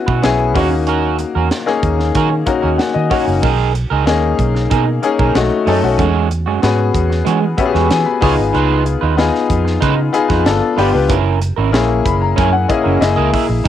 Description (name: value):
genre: polished 1980s jazz-funk pop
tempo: 94 BPM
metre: 4/4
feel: straight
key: unclear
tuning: A4 = 440 Hz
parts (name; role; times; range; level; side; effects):
- bright grand piano; accompaniment; 0.0-13.7 s; A3 to B5; -16 LUFS; left 6 dB; analog chorus, cassette tape
- electric guitar at the edge of break-up; riff; 0.1-13.7 s; G#3 to E5; -19 LUFS; right 10 dB; wide subtle chorus, cassette tape
- vintage muted fingered electric bass; bass; 0.1-13.7 s; F#1 to E3; -17 LUFS; right 1 dB; none
- crisp fusion drum kit; drums; 0.1-13.7 s; crash cymbal, hi-hat, kick drum, snare drum; -21 LUFS; right 2 dB; cassette tape
room: light reverb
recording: home recording on cassette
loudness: -12 LUFS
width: side -10 dB against mid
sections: 0.0-3.4 A section; 3.4-13.7 B section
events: grand piano fill 2.2-3.4, 7.3-8.5, 11.7-13.7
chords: 0.0 F#7sus4; 0.6 D#m7; 3.4 Bmaj13; 5.3 B7; 6.0 E69; 8.2 C#9; 10.5 G9; 11.1 F#7; 13.0 F#13